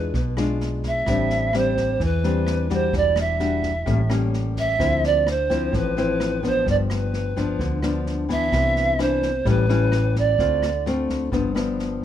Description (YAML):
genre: bossa nova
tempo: 129 BPM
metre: 4/4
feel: straight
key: unclear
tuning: A4 = 440 Hz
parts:
  - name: polished pan flute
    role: melody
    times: 0.0-10.8 s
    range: B4 to E5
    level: -23 LUFS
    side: right 3 dB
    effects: none
  - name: nylon-string guitar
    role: accompaniment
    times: 0.0-12.0 s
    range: G2 to F#4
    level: -24 LUFS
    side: left 4 dB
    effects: none
  - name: hollow-body short-scale fingered electric bass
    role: bass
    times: 0.0-12.0 s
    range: E1 to E2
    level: -25 LUFS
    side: right 1 dB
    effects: none
  - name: open jazz drum kit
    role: drums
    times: 0.1-12.0 s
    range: kick drum, rim click, snare drum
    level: -31 LUFS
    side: equal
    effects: none
room: light reverb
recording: minimal, uncompressed stereo recording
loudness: -19 LUFS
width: side -10 dB against mid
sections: 0.0-12.0 A section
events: none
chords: 0.0 E7b9; 1.1 Am11; 2.9 Em9; 3.9 A7b9; 4.8 Dm9; 6.7 G7; 8.5 Cmaj9; 9.5 A7; 10.4 Dm7; 11.3 G7